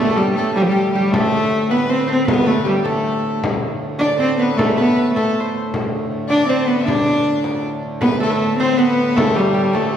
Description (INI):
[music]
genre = medieval dance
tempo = 104 BPM (dotted quarters)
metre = 6/8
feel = straight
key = unclear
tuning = A4 = 440 Hz
[part]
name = dark viola da gamba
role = melody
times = 0.0-10.0 s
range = F3 to D4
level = -17 LUFS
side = equal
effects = none
[part]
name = concert harp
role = second line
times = 0.0-10.0 s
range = G4 to D5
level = -26 LUFS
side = right 2 dB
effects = none
[part]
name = warm fiddle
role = second line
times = 0.0-10.0 s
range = G4 to E5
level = -24 LUFS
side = left 4 dB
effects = none
[part]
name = hand-pumped harmonium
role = drone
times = 0.0-10.0 s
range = D2 to A2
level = -25 LUFS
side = right 1 dB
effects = none
[part]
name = frame drum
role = percussion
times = 0.2-9.9 s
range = none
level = -25 LUFS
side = left 2 dB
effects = none
[sound]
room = wet scoring stage reverb, RT60 1.7 s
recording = heard from further back in the room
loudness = -15 LUFS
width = side -9 dB against mid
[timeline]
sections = 0.0-8.0 A section; 8.0-10.0 B section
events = none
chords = none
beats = 0.56 | 1.13 1.71 | 2.28 2.86 | 3.43 4.01 | 4.58 5.16 | 5.73 6.30 | 6.88 7.45 | 8.03 8.60 | 9.17 9.75